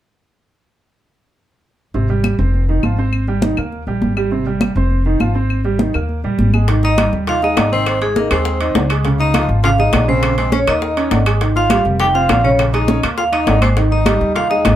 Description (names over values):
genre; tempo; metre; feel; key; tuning
Afro-Cuban jazz; 203 BPM; 4/4; straight; Ab major; A4 = 440 Hz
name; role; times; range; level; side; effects
clear baby grand piano; accompaniment; 1.9-14.8 s; C3 to Eb5; -20 LUFS; right 4 dB; none
upright bass; bass; 1.9-14.8 s; F1 to Eb2; -17 LUFS; equal; none
congas; percussion; 1.9-14.8 s; none; -22 LUFS; equal; none
claves; percussion; 2.2-14.8 s; none; -26 LUFS; left 7 dB; none
bongos; percussion; 6.7-14.8 s; none; -25 LUFS; left 6 dB; none
timbales; percussion; 6.7-14.8 s; none; -23 LUFS; right 3 dB; none
vibraphone with medium hard mallets; melody; 6.8-14.8 s; Ab4 to G5; -18 LUFS; equal; none
bright tenor saxophone; second line; 6.8-14.8 s; Ab3 to G4; -22 LUFS; left 4 dB; none
room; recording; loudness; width
moderate club reverb, RT60 0.6 s; heard from further back in the room; -13 LUFS; side -12 dB against mid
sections
1.9-6.7 A section; 6.7-14.8 B section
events
none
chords
1.9 Abmaj7; 2.5 Fm7; 3.1 Abmaj7; 3.7 Eb; 4.3 Abmaj7; 4.9 Fm7; 5.5 Abmaj7; 6.1 Eb; 6.7 Ab5; 7.9 Ab; 9.0 Dbadd9; 10.2 Bbm7; 10.8 Eb5; 11.4 Ab5; 12.0 F5; 12.6 Bbm7; 13.2 Eb5; 13.8 Abmaj7(no3)